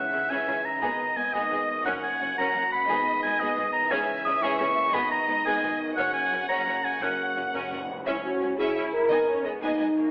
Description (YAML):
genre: cinematic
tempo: 116 BPM (dotted quarters)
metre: 6/8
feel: straight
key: F# mixolydian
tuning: A4 = 440 Hz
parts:
  - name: warm symphonic violin section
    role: melody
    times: 0.0-9.9 s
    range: C#5 to G#5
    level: -36 LUFS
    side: equal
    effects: none
  - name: clear oboe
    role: second line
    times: 0.0-7.5 s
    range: D#5 to D#6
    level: -28 LUFS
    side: equal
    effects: none
  - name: clear trombone section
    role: sustained chords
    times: 0.0-7.9 s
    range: F#2 to F#3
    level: -40 LUFS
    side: equal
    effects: none
  - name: mellow French horn section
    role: sustained chords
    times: 0.0-10.1 s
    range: G#3 to A#4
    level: -34 LUFS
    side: equal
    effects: none
  - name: concert harp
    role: arpeggios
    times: 0.0-10.1 s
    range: F#2 to C#5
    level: -46 LUFS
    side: equal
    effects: none
  - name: timpani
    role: percussion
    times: 0.0-2.3, 7.0-8.0 s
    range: F#2 to C#3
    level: -48 LUFS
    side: equal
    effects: none
  - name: warm symphonic violin section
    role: second line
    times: 0.1-9.9 s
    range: D#4 to D#5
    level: -38 LUFS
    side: equal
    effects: none
  - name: warm symphonic viola section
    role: accompaniment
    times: 0.1-9.9 s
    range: B3 to C#4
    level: -38 LUFS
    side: equal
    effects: none
  - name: rich symphonic double bass section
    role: bass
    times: 0.1-9.9 s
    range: F#1 to C#2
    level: -49 LUFS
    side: equal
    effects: none
  - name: warm symphonic cello section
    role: bass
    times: 0.1-10.1 s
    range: F#2 to E4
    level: -39 LUFS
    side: equal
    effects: none
room: wet recital hall reverb, RT60 1.5 s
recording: telephone sound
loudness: -26 LUFS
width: mono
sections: 0.0-8.1 A section; 8.1-10.1 A section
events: timpani fill 7.0-8.1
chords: 0.0 C#m; 0.8 G#m; 1.9 F#; 2.9 G#m; 3.9 C#m; 4.9 G#m; 6.0 F#; 8.1 C#m; 9.1 G#m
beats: 0.31 | 0.83 1.35 | 1.86 2.38 | 2.89 3.40 | 3.91 4.42 | 4.94 5.45 | 5.97 6.49 | 7.01 7.54 | 8.07 8.59 | 9.10 9.62